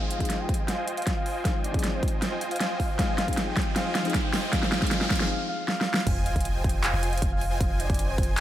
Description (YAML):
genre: future bass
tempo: 156 BPM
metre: 4/4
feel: half-time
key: F minor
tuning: A4 = 440 Hz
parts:
  - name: soft octave-layered synth lead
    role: melody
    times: 0.0-8.3 s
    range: C5 to G5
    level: -34 LUFS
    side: left 1 dB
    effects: chorus, sidechain pumping, dub echo
  - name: soft round pluck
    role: accompaniment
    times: 0.0-5.3 s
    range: F3 to Ab4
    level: -35 LUFS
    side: left 3 dB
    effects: lush chorus, cassette tape, sidechain pumping, dub echo
  - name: supersaw chords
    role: riff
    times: 0.0-8.4 s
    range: F4 to Ab5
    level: -34 LUFS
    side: right 1 dB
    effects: sidechain pumping, low-pass filter
  - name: riser and sub drop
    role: sound effects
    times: 0.0-7.6 s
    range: none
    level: -37 LUFS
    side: equal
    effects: none
  - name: big-room dance drum kit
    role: drums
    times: 0.1-8.4 s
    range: crash cymbal, handclaps, hi-hat, snare drum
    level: -29 LUFS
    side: right 1 dB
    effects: overdrive
  - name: electronic kick drum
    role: drums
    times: 0.2-8.3 s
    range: none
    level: -28 LUFS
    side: equal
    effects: overdrive
  - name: airy dreamy lead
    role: arpeggios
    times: 6.1-8.4 s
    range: Ab5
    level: -37 LUFS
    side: right 1 dB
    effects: chorus, sidechain pumping, dub echo
  - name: warm 808-style bass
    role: bass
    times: 6.1-8.4 s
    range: F1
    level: -28 LUFS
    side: equal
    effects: sidechain pumping
room: light reverb, digital ambience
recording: none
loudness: -24 LUFS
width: side -12 dB against mid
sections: 0.0-6.1 A section; 6.1-8.4 B section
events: build-up 0.0-6.1; drum fill 0.0-5.3, 5.7-6.1; riser 0.0-5.3; break 5.3-6.1; drop 6.1-8.4; impact 6.1-7.6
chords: 0.0 Fm7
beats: 0.30 0.68 1.07 | 1.45 1.84 2.22 2.61 | 2.99 3.38 3.76 4.14 | 4.53 4.91 5.30 5.68 | 6.07 6.45 6.84 7.22 | 7.61 7.99 8.38